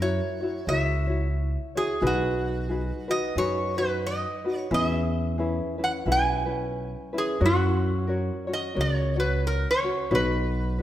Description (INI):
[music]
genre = Hawaiian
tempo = 89 BPM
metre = 4/4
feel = swing 60% on 8ths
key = B major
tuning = A4 = 440 Hz
[part]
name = metal-body resonator slide guitar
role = melody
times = 0.0-10.8 s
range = F#4 to G#5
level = -28 LUFS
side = right 1 dB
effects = none
[part]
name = tenor ukulele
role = accompaniment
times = 0.0-10.8 s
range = C#4 to C#5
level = -29 LUFS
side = left 2 dB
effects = none
[part]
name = upright bass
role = bass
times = 0.0-10.8 s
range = B1 to F#2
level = -28 LUFS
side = equal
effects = none
[sound]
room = moderate recital hall reverb, RT60 1.7 s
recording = recorded in a church or concert hall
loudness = -24 LUFS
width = side -12 dB against mid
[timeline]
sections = 0.0-10.8 A section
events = none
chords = 0.0 F#7; 2.0 B6; 4.7 E6; 7.4 F#; 10.1 Badd9